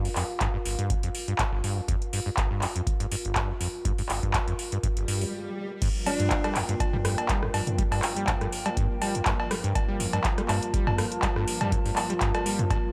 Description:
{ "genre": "acid house", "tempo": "122 BPM", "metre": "4/4", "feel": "swing 54% on 16ths", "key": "G minor", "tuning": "A4 = 444 Hz", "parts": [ { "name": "acid bass, saw", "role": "riff", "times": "0.0-12.8 s", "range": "G1 to G3", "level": "-33 LUFS", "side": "equal", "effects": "overdrive, subtle chorus, cassette tape, sidechain pumping" }, { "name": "warbly tape-like pad", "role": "texture", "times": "0.0-12.9 s", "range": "F4 to A5", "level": "-38 LUFS", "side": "equal", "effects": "chorus, built-in reverb, sidechain pumping" }, { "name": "electro analog drum machine", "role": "drums", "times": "0.1-12.8 s", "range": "cowbell, crash cymbal, handclaps, hi-hat, rim click, toms", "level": "-32 LUFS", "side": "equal", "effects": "none" }, { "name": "electronic kick drum", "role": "drums", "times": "0.4-12.8 s", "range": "none", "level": "-31 LUFS", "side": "equal", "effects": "none" }, { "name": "swell", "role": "sound effects", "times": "5.0-5.8 s", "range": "none", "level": "-39 LUFS", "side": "equal", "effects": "none" }, { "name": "lush unison pad", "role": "sustained chords", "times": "5.8-12.9 s", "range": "G2 to Bb3", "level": "-37 LUFS", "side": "equal", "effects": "chorus, sidechain pumping" }, { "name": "mellow alto saxophone", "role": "melody", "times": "6.1-6.6 s", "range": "D4", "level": "-38 LUFS", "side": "equal", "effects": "dub echo" } ], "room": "light reverb, digital ambience", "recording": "none", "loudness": "-27 LUFS", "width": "mono", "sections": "0.0-5.8 A section; 5.8-12.9 B section", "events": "swell 5.0-5.8; break 5.3-5.8; drop 5.8-12.9", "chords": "0.0 Gm7", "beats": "0.41 0.90 1.39 | 1.88 2.38 2.87 3.36 | 3.85 4.34 4.83 5.33 | 5.82 6.31 6.80 7.29 | 7.79 8.28 8.77 9.26 | 9.75 10.24 10.74 11.23 | 11.72 12.21 12.70" }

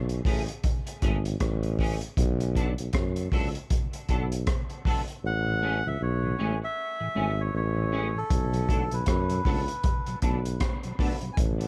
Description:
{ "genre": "dub reggae", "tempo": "78 BPM", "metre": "4/4", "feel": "swing 60% on 16ths", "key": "unclear", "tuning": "A4 = 439 Hz", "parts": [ { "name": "mellow tuba", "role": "bass", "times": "0.0-11.7 s", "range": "G#1 to F#2", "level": "-31 LUFS", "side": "equal", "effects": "none" }, { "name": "crunchy breakbeat drum kit", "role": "drums", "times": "0.1-11.7 s", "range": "hi-hat, kick drum, rim click", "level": "-30 LUFS", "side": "equal", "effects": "none" }, { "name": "clean electric guitar", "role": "accompaniment", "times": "0.3-11.1 s", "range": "E3 to A4", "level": "-40 LUFS", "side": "equal", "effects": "ensemble chorus, dub echo" }, { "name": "melodica", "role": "melody", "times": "5.3-11.4 s", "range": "A4 to G#5", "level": "-34 LUFS", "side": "equal", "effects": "dub echo" }, { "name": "mellow tonewheel organ", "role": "accompaniment", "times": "5.5-11.3 s", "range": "A2 to D4", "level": "-39 LUFS", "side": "equal", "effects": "slow rotary speaker" } ], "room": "small room ambience", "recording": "none", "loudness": "-28 LUFS", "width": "mono", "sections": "0.0-11.7 A section", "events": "break 0.0-5.2; part muted 5.2-8.3", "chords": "0.0 Amaj7; 2.2 Bm7; 5.2 Amaj7; 8.3 Bm7", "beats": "0.64 1.41 | 2.17 2.94 3.70 4.47 | 5.24 6.00 6.77 7.54 | 8.30 9.07 9.84 10.61 | 11.37" }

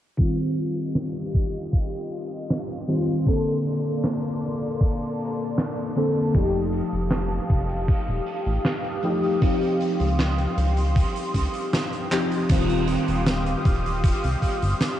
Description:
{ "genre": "vaporwave", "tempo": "78 BPM", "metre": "4/4", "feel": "straight", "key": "Eb lydian", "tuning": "A4 = 440 Hz", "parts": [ { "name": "mellow FM electric piano", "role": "accompaniment", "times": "0.2-15.0 s", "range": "D3 to A4", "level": "-25 LUFS", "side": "left 1 dB", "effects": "ensemble chorus, tape echo" }, { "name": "lush unison pad", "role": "sustained chords", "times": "0.8-15.0 s", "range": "Bb3 to Eb6", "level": "-30 LUFS", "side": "left 1 dB", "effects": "chorus, phaser" }, { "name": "electronic kick drum", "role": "drums", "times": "0.2-14.6 s", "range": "none", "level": "-22 LUFS", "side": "equal", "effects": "overdrive, vintage 12-bit sampler grit" }, { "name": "oversized low-tuned drum kit", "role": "drums", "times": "0.2-15.0 s", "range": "crash cymbal, handclaps, hi-hat, snare drum", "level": "-30 LUFS", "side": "right 1 dB", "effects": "vintage 12-bit sampler grit" }, { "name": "chorused synth bass", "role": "bass", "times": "6.3-14.7 s", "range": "Eb1 to Db2", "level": "-25 LUFS", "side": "equal", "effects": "tube saturation" } ], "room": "light reverb", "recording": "cassette tape, low-pass filter", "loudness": "-21 LUFS", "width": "side -12 dB against mid", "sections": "0.2-12.5 A section; 12.5-15.0 B section", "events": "filter sweep on analog synth pad 0.2-12.5; filter sweep 0.2-12.5; drum fill 12.1-12.5", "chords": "0.2 Eb69; 3.3 Bbmaj9; 6.3 F9; 9.4 Dbmaj9#11; 12.5 Eb69", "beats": "| 0.19 0.96 1.73 2.50 | 3.27 4.04 4.81 5.58 | 6.35 7.12 7.88 8.65 | 9.42 10.19 10.96 11.73 | 12.50 13.27 14.04 14.81" }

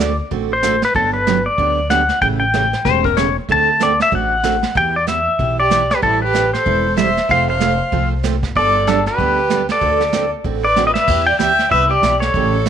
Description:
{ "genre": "country, western swing", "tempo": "190 BPM", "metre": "4/4", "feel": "swing 61% on 8ths", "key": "G major", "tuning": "A4 = 440 Hz", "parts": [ { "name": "pedal steel guitar", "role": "melody", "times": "0.0-12.7 s", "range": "A4 to A5", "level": "-15 LUFS", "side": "left 2 dB", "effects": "none" }, { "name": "picked steel-string acoustic guitar", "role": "accompaniment", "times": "0.0-12.7 s", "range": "C#3 to A4", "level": "-22 LUFS", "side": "right 12 dB", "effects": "none" }, { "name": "upright bass", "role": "bass", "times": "0.0-12.7 s", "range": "E1 to E2", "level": "-22 LUFS", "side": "left 1 dB", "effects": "none" }, { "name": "vintage brush drum kit", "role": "drums", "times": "0.0-12.7 s", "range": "brushed snare drum, crash cymbal, hi-hat, kick drum, snare drum", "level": "-24 LUFS", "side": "right 5 dB", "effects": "none" }, { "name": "clean lap steel guitar", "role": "second line", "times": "2.9-3.4 s", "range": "Bb4 to C#5", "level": "-17 LUFS", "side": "left 16 dB", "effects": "none" }, { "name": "clear fiddle", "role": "second line", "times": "5.6-12.7 s", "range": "D4 to E5", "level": "-23 LUFS", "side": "right 11 dB", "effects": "none" } ], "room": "light reverb, small room ambience", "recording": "1960s-style stereo with parts hard left and right", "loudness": "-13 LUFS", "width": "side -8 dB against mid", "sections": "0.0-12.7 A section", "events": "drum fill 10.8-11.1", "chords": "0.0 D7; 0.9 Gmaj7; 2.2 A7; 3.5 D7; 4.8 Em; 6.0 Am7; 7.3 F; 8.6 Gadd9; 9.8 D7; 11.1 Em", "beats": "0.00 0.31 0.63 | 0.95 1.27 1.58 1.90 | 2.22 2.54 2.85 3.17 | 3.49 3.80 4.12 4.44 | 4.75 5.07 5.39 5.71 | 6.02 6.34 6.65 6.97 | 7.29 7.60 7.92 8.23 | 8.55 8.87 9.18 9.50 | 9.82 10.13 10.45 10.76 | 11.08 11.40 11.71 12.03 | 12.34 12.66" }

